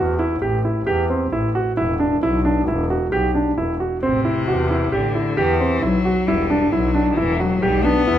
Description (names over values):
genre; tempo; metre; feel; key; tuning
contemporary instrumental, chamber music in an uneven meter; 133 BPM; 5/4; straight; A dorian; A4 = 440 Hz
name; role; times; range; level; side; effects
clear concert grand piano; arpeggios; 0.0-8.2 s; C4 to G4; -19 LUFS; right 1 dB; none
rich double bass; bass; 0.0-8.2 s; E1 to E2; -22 LUFS; equal; none
clear cello; second line; 4.0-8.2 s; C3 to B3; -22 LUFS; left 5 dB; none
room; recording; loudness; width
moderate recital hall reverb, RT60 1.5 s; minimal, uncompressed stereo recording; -17 LUFS; side -11 dB against mid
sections
0.0-8.2 A section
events
none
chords
0.0 A7(no3); 1.8 E7(no3); 4.0 Am7; 6.3 Em7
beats
0.42 0.87 1.32 | 1.78 2.23 2.68 3.13 3.58 | 4.03 4.48 4.93 5.38 5.83 | 6.28 6.73 7.18 7.63 8.08